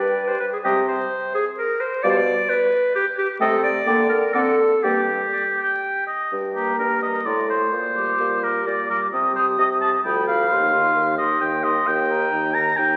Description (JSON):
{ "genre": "quick classical-period movement for wind quintet", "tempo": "129 BPM", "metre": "3/4", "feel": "rubato", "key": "G minor from 3.4 s", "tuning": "A4 = 439 Hz", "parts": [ { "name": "mellow hollow silver concert flute", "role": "melody", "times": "0.0-13.0 s", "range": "F5 to Eb6", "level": "-27 LUFS", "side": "equal", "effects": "none" }, { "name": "clear oboe", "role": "second line", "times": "0.0-13.0 s", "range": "G4 to Bb5", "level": "-25 LUFS", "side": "equal", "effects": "none" }, { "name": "clear clarinet", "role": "accompaniment", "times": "0.0-13.0 s", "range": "F#4 to D5", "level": "-26 LUFS", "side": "equal", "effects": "none" }, { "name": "mellow French horn", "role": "accompaniment", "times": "0.0-13.0 s", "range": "Eb3 to C4", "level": "-33 LUFS", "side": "equal", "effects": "none" }, { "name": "dark bassoon", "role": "bass", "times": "0.0-13.0 s", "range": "D2 to D3", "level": "-27 LUFS", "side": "equal", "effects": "none" } ], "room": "wet recital hall reverb, RT60 1.8 s", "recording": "very old 78 rpm record, vinyl crackle", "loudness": "-21 LUFS", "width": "mono", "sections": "0.0-6.3 A section; 6.3-13.0 B section", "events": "none", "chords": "0.0 G; 0.6 C5; 2.0 G/B; 3.4 Am7b5/C; 3.9 Gm/D; 4.3 D7; 4.8 N.C.; 6.3 Gm; 7.3 D7/A; 7.7 Gm/Bb; 9.1 Cm; 10.0 G7/D; 10.5 Cm/Eb; 11.9 Eb", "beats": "0.16 | 0.64 1.11 1.58 | 2.04 2.50 2.96 | 3.41 3.87 4.34 | 4.83 5.33 5.83 | 6.32 6.79 7.26 | 7.73 8.20 8.66 | 9.13 9.59 10.05 | 10.50 10.95 11.41 | 11.86 12.32 12.77" }